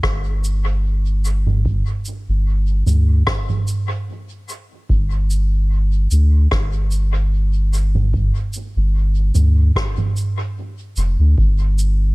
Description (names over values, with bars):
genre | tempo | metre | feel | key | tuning
ambient dub | 74 BPM | 4/4 | swing 56% on 16ths | unclear | A4 = 441 Hz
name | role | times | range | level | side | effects
soft dub sub bass | bass | 0.0-12.1 s | F1 to D2 | -15 LUFS | equal | none
electronic kick drum | drums | 0.0-11.6 s | none | -22 LUFS | equal | none
soft-mallet drum kit | drums | 0.0-12.0 s | rim click, shaker, toms | -22 LUFS | right 2 dB | dub echo
room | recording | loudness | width
little or no reverb | echo-heavy mix | -15 LUFS | side -23 dB against mid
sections
0.0-12.1 A section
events
none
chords
none